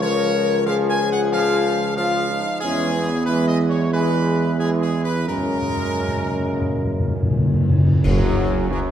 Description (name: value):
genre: classical, ceremonial fanfare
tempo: 90 BPM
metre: 4/4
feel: straight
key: unclear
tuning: A4 = 441 Hz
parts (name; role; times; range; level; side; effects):
- clear trumpet section; melody; 0.0-8.8 s; F#3 to G#5; -25 LUFS; equal; none
- bright trombone section; sustained chords; 0.0-8.9 s; F#2 to G#3; -26 LUFS; right 3 dB; none
- mellow French horn section; sustained chords; 0.0-8.9 s; F#3 to A#4; -25 LUFS; left 6 dB; none
- clear tuba; bass; 0.0-8.8 s; F#1 to F#2; -23 LUFS; right 2 dB; none
- cymbal swell, clash cymbals and concert bass drum; percussion; 5.3-8.9 s; none; -25 LUFS; equal; none
- timpani; percussion; 5.3-8.9 s; F#2 to B2; -20 LUFS; left 1 dB; none
room: wet scoring stage reverb, RT60 1.9 s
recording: dark, warm production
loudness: -17 LUFS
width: side -10 dB against mid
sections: 0.0-8.0 A section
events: timpani fill 5.3-8.0; band accent 8.0-8.7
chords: 0.0 C#; 2.6 E; 5.3 F#add9; 8.0 B5/F#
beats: | 0.01 0.67 1.32 1.97 | 2.63 3.28 3.93 4.60 | 5.29 5.98 6.66 7.34 | 8.03 8.70